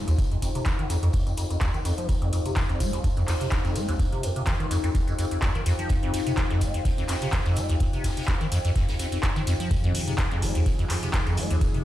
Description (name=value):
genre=acid house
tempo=126 BPM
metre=4/4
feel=swing 54% on 16ths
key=F minor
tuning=A4 = 444 Hz
part: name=liquid acid bass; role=riff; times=0.0-11.8 s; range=F1 to Ab3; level=-26 LUFS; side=equal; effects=phaser, tube saturation, lush chorus, cassette tape, sidechain pumping
part: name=deep dark ambient pad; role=texture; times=0.0-11.8 s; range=Eb4 to Ab5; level=-33 LUFS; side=left 3 dB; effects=chorus, built-in reverb, sidechain pumping
part: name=booming analog drum machine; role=drums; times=0.1-11.8 s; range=handclaps, hi-hat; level=-33 LUFS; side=equal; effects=overdrive
part: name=tambourine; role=percussion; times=0.1-11.7 s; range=none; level=-42 LUFS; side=left 4 dB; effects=none
part: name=electronic kick drum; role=drums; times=0.2-11.7 s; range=none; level=-26 LUFS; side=equal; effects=overdrive
part: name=unplugged drum kit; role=drums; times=0.2-11.8 s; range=hi-hat, snare drum, tambourine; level=-43 LUFS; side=equal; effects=high-pass filter on hats, high-pass filter on snare, high-pass filter on perc, high-pass filter on room
part: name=lush unison pad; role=sustained chords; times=9.7-11.8 s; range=F2 to Ab4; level=-32 LUFS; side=equal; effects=chorus, sidechain pumping
room=moderate studio ambience, RT60 0.5 s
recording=played on a big sound system in a bare room, stone room reverb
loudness=-23 LUFS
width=side -14 dB against mid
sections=0.0-11.8 A section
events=filter sweep on acid bass 0.0-11.8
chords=0.0 Fm7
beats=| 0.18 0.66 1.14 1.61 | 2.09 2.57 3.04 3.52 | 4.00 4.47 4.95 5.42 | 5.90 6.38 6.85 7.33 | 7.80 8.28 8.76 9.23 | 9.71 10.19 10.66 11.14 | 11.61